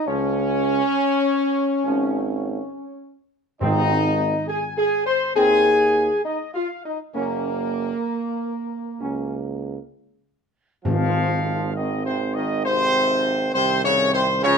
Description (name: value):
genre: classical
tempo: 67 BPM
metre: 4/4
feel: straight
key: Ab mixolydian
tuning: A4 = 441 Hz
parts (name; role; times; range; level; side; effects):
- dark trumpet section; melody; 0.0-14.6 s; Bb4 to C6; -24 LUFS; left 2 dB; none
- warm French horn section; sustained chords; 0.0-14.6 s; Eb3 to C5; -23 LUFS; left 1 dB; none
- warm trombone section; sustained chords; 0.1-14.6 s; C3 to Db4; -27 LUFS; right 2 dB; none
- clear tuba; bass; 0.1-14.6 s; Gb1 to Eb2; -27 LUFS; right 4 dB; none
- timpani; percussion; 3.6-4.9, 10.9-12.2 s; Ab2; -25 LUFS; equal; none
room: moderate studio reverb, RT60 0.9 s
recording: minimal, uncompressed stereo recording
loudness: -19 LUFS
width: side -6 dB against mid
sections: 0.0-10.9 A section; 10.9-14.6 B section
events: none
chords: 0.1 Db; 3.6 Ab; 7.1 Gb; 10.9 Ab